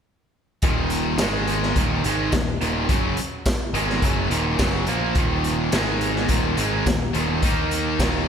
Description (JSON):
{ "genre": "classic rock", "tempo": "106 BPM", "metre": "4/4", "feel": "straight", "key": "Eb minor", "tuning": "A4 = 440 Hz", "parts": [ { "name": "overdriven electric guitar", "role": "riff", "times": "0.6-8.3 s", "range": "Eb2 to Eb4", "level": "-25 LUFS", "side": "right 9 dB", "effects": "slapback echo" }, { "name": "tight distorted guitar", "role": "riff", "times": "0.6-8.3 s", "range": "Eb2 to Eb4", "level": "-25 LUFS", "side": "left 10 dB", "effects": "distortion" }, { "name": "growling picked electric bass", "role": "bass", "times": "0.6-8.3 s", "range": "Eb1 to Eb2", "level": "-27 LUFS", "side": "equal", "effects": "overdrive" }, { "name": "raw garage drum kit", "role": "drums", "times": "0.6-8.1 s", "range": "hi-hat, kick drum, snare drum, tambourine", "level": "-24 LUFS", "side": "equal", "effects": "none" } ], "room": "moderate lush hall reverb, RT60 1.7 s, small room ambience", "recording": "big arena sound", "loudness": "-19 LUFS", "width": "side -7 dB against mid", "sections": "0.6-8.3 A section", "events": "none", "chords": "0.6 Eb5; 1.2 Ab5; 1.8 Ebm; 5.7 Ab5; 6.3 Eb5" }